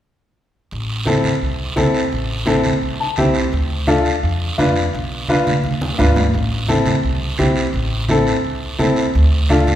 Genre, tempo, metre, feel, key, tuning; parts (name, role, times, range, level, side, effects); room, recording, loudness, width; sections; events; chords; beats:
latin, cumbia; 171 BPM; 4/4; straight; A minor; A4 = 439 Hz
upright bass; bass; 0.7-9.7 s; A1 to F2; -20 LUFS; equal
guiro; percussion; 0.7-9.8 s; -26 LUFS; right 3 dB
warm upright piano; accompaniment; 1.1-9.7 s; C4 to A5; -18 LUFS; left 1 dB
congas; percussion; 1.1-9.8 s; -22 LUFS; right 1 dB
wet recital hall reverb, RT60 1.4 s; recorded in a church or concert hall; -15 LUFS; side -11 dB against mid
0.7-9.8 A section
upright piano fill 2.8-3.5; drum fill 5.6-6.3
0.7 Am; 3.5 Dm; 4.9 Bdim; 6.3 Am; 9.1 Dm
| 0.71 1.06 1.42 1.77 | 2.12 2.47 2.82 3.17 | 3.52 3.88 4.23 4.58 | 4.93 5.28 5.63 5.99 | 6.34 6.69 7.04 7.39 | 7.74 8.09 8.45 8.80 | 9.15 9.50